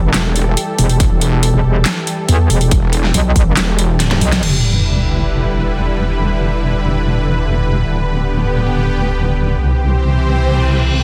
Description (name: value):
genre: heavy wobble dubstep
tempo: 140 BPM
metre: 4/4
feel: half-time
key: E minor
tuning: A4 = 440 Hz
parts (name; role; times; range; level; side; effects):
- supersaw pad; sustained chords; 0.0-11.0 s; D3 to C5; -22 LUFS; equal; sidechain pumping, low-pass filter
- metallic wobble bass; bass; 0.0-4.4 s; E1 to E2; -14 LUFS; equal; chorus, overdrive
- wobble bass; bass; 0.1-11.0 s; D1 to C2; -18 LUFS; equal; chorus, overdrive
- dubstep drum kit; drums; 0.1-4.5 s; crash cymbal, handclaps, hi-hat, snare drum; -21 LUFS; equal; studio reverb
- electronic kick drum; drums; 1.0-3.4 s; none; -16 LUFS; equal; studio reverb
- zap, sub drop and reverse cymbal; sound effects; 4.1-6.1, 10.6-11.0 s; none; -23 LUFS; equal; none
room: little or no reverb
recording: dense, heavily limited modern master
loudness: -15 LUFS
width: mono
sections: 0.0-4.4 A section; 4.4-11.0 B section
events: drop 0.0-4.4; drum fill 4.0-4.4; band accent 4.3; impact 4.4-6.1; reverse cymbal 10.6-11.0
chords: 0.0 Em; 4.4 Em7; 7.9 G/D; 9.6 C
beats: 0.14 0.57 | 1.00 1.43 1.86 2.29 | 2.71 3.14 3.57 4.00 | 4.43 4.86 5.29 5.71 | 6.14 6.57 7.00 7.43 | 7.86 8.29 8.71 9.14 | 9.57 10.00 10.43 10.86